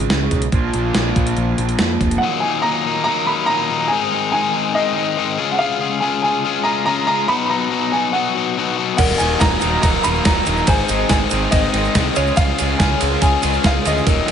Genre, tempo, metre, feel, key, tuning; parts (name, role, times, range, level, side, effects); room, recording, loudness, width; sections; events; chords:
indie rock; 142 BPM; 4/4; straight; Eb minor; A4 = 440 Hz
fuzz guitar; riff; 0.0-2.2, 9.2-14.3 s; Bb2 to Ab4; -24 LUFS; right 10 dB; distortion, wide subtle chorus, slapback echo, tape echo
overdriven semi-hollow guitar; riff; 0.0-14.3 s; Eb2 to Ab4; -20 LUFS; left 8 dB; slapback echo
growling picked electric bass; bass; 0.0-2.2, 9.0-14.2 s; Eb1 to F2; -22 LUFS; right 1 dB; overdrive
crisp 8-bit digital drum machine; drums; 0.1-2.2, 9.0-14.3 s; crash cymbal, hi-hat, kick drum, ride cymbal, snare drum; -19 LUFS; right 1 dB
dark upright piano; melody; 2.2-14.3 s; Eb5 to Cb6; -20 LUFS; equal; slapback echo, tape echo
soft synth bell; second line; 9.0-14.3 s; Bb4 to Db5; -27 LUFS; right 1 dB; chorus, phaser, tape echo
phased string machine; sustained chords; 9.6-14.3 s; C4 to Gb5; -31 LUFS; right 1 dB
tube shaker; percussion; 9.0-14.2 s; -33 LUFS; right 14 dB
light reverb; nothing above 10.9 kHz; -15 LUFS; side -8 dB against mid
0.0-2.2 A section; 2.2-14.3 B section
0.0 Db7; 0.5 Bb; 2.2 Ebm; 3.9 Ab; 5.4 Db; 7.3 B; 9.0 Ebmadd9; 10.7 Ab; 12.2 Db6